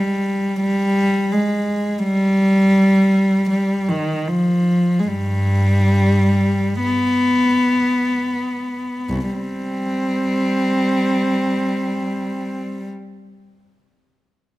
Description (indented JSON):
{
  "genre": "classical, free, expressive piece for unaccompanied cello",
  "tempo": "21-46 BPM",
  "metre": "4/4",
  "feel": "rubato",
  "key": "unclear",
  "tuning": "A4 = 440 Hz",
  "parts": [
    { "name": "warm cello", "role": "solo", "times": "0.0-12.9 s", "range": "C2 to C4", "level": "-16 LUFS", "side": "equal", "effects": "none" }
  ],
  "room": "moderate recital hall reverb, RT60 1.9 s",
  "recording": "close, detailed microphones",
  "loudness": "-16 LUFS",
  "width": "side -17 dB against mid",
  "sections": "0.0-9.1 A section; 9.1-14.6 B section",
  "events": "slowing down 0.0-9.1",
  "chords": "none",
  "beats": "0.61 | 2.04 3.50 5.07 6.83 | 9.10 10.91 12.68"
}